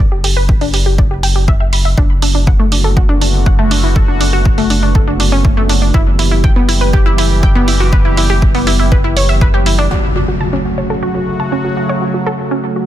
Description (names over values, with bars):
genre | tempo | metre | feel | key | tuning
melodic techno | 121 BPM | 4/4 | straight | F# phrygian | A4 = 439 Hz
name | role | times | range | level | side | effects
wide unison pluck | arpeggios | 0.0-12.9 s | A3 to B5 | -17 LUFS | equal | sidechain pumping, digital delay
round analog bass | bass | 0.0-9.9 s | F#1 | -14 LUFS | equal | sidechain pumping
electronic hi-hat | drums | 0.2-9.8 s | none | -19 LUFS | right 4 dB | none
electronic kick drum | drums | 0.5-9.5 s | none | -12 LUFS | equal | none
sweeping resonant pad | sustained chords | 2.0-12.9 s | C#3 to G4 | -19 LUFS | right 1 dB | chorus, sidechain pumping
impact | sound effects | 9.9-11.9 s | none | -20 LUFS | equal | none
room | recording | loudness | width
little or no reverb | dense, heavily limited modern master | -10 LUFS | side -12 dB against mid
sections
0.0-9.9 A section; 9.9-12.9 B section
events
filter sweep on synth arpeggio sound 0.0-9.9, 9.9-12.9; impact 9.9-11.9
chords
0.0 N.C.; 2.0 D6/F#; 5.9 Em/F#; 9.9 F#m